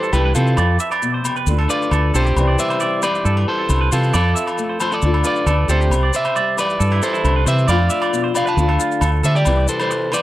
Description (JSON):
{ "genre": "highlife guitar band", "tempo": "135 BPM", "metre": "4/4", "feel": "straight", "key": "C major", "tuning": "A4 = 440 Hz", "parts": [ { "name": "electric guitar at the edge of break-up", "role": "melody", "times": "0.0-10.2 s", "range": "F4 to A5", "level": "-21 LUFS", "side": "right 1 dB", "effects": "none" }, { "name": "fingerpicked steel-string acoustic guitar", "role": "accompaniment", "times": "0.0-10.2 s", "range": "F2 to F4", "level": "-24 LUFS", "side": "left 4 dB", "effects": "none" }, { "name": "clean electric guitar", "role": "arpeggios", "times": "0.0-10.2 s", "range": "E4 to E5", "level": "-24 LUFS", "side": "right 4 dB", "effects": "none" }, { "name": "maracas", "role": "percussion", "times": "0.0-10.2 s", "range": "none", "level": "-29 LUFS", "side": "left 8 dB", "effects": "none" }, { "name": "deep dub fingered electric bass", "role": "bass", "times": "0.1-9.7 s", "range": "B1 to D3", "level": "-16 LUFS", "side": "equal", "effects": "none" }, { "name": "agogo bells", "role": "percussion", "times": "0.1-10.2 s", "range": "none", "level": "-27 LUFS", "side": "left 3 dB", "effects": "none" } ], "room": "light reverb, small room ambience", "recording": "none", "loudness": "-15 LUFS", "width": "side -15 dB against mid", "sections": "0.0-10.2 A section", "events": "none", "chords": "0.0 C; 0.6 F5; 1.5 Dm; 2.4 C; 4.1 F6; 5.0 Dm; 5.9 C; 7.7 F6; 8.6 Dm; 9.5 C" }